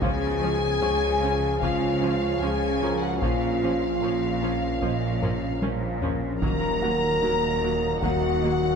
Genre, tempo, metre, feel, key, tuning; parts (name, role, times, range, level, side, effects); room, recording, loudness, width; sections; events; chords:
cinematic, hybrid orchestral and electronic film score; 75 BPM; 4/4; straight; Eb minor; A4 = 439 Hz
warm symphonic violin section; second line; 0.0-8.8 s; F5 to Bb5; -30 LUFS; left 4 dB
warm studio viola section; accompaniment; 0.0-8.5 s; F3 to Db4; -34 LUFS; equal
bright trombone section; sustained chords; 0.0-8.8 s; F3 to Db4; -34 LUFS; right 3 dB
deep dark ambient pad; sustained chords; 0.0-8.8 s; F3 to F5; -32 LUFS; left 2 dB; chorus, built-in reverb
warm French horn section; sustained chords; 0.0-8.8 s; F4 to Bb4; -27 LUFS; left 1 dB
soft round pluck; arpeggios; 0.0-8.7 s; Db3 to Bb4; -36 LUFS; right 2 dB
clear studio cello section; bass; 0.0-8.7 s; Eb2 to Db3; -34 LUFS; right 1 dB
rich studio double bass section; bass; 0.0-8.7 s; Bb1 to Eb2; -32 LUFS; right 4 dB
wide detuned saw bass; bass; 0.0-8.8 s; Eb1 to Db2; -33 LUFS; equal; chorus
solo taiko drums; drums; 0.0-8.8 s; -32 LUFS; equal
dark baby grand piano; texture; 0.0-8.8 s; Gb4 to Db6; -40 LUFS; left 2 dB
moderate scoring stage reverb, RT60 2.1 s; -22 LUFS; side -6 dB against mid
0.0-8.8 A section
drum fill 5.2-6.4
0.0 Db; 3.2 Bbm; 6.4 Ebm